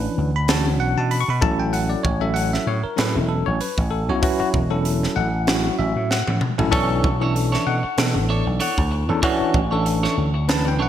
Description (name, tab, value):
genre	electric jazz fusion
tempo	96 BPM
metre	4/4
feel	swing 56% on 16ths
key	unclear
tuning	A4 = 442 Hz
part	barky tine electric piano	accompaniment	0.0-10.9 s	E3 to C#6	-22 LUFS	left 1 dB	medium stereo tremolo
part	vintage slap bass	bass	0.0-10.9 s	E1 to B2	-22 LUFS	equal	none
part	crisp fusion drum kit	drums	0.5-10.7 s	hi-hat, kick drum, snare drum, toms	-24 LUFS	equal	gated reverb
part	clean electric guitar	stabs	6.7-10.9 s	D4 to C#5	-27 LUFS	right 2 dB	lush chorus, ping-pong delay
room	moderate plate reverb, RT60 1.9 s, small room ambience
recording	bright 1980s-style digital production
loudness	-18 LUFS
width	side -10 dB against mid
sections	0.0-10.9 A section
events	drum fill 6.1-6.7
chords	0.0 Bm11; 1.4 F#m7; 6.7 Bm11